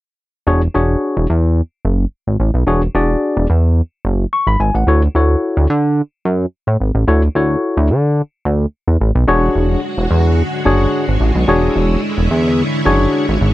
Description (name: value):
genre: funk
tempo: 109 BPM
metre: 4/4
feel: straight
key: unclear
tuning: A4 = 440 Hz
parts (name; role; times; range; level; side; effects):
- barky tine electric piano; accompaniment; 0.5-13.2 s; D4 to C#6; -15 LUFS; left 2 dB; none
- chorused synth bass; bass; 0.5-13.5 s; E1 to D3; -13 LUFS; equal; none
- string machine, full ensemble; sustained chords; 9.3-13.5 s; D3 to C#5; -20 LUFS; equal; ensemble chorus
room: little or no reverb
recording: dry, close 1970s-style studio recording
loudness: -13 LUFS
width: side -16 dB against mid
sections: 0.5-9.3 A section; 9.3-13.5 B section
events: none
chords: 0.5 E13; 4.9 Dmaj7; 9.3 E13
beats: | 0.47 1.02 1.57 2.12 | 2.67 3.23 3.78 4.33 | 4.88 5.43 5.98 6.53 | 7.08 7.63 8.18 8.73 | 9.28 9.83 10.38 10.93 | 11.48 12.03 12.58 13.13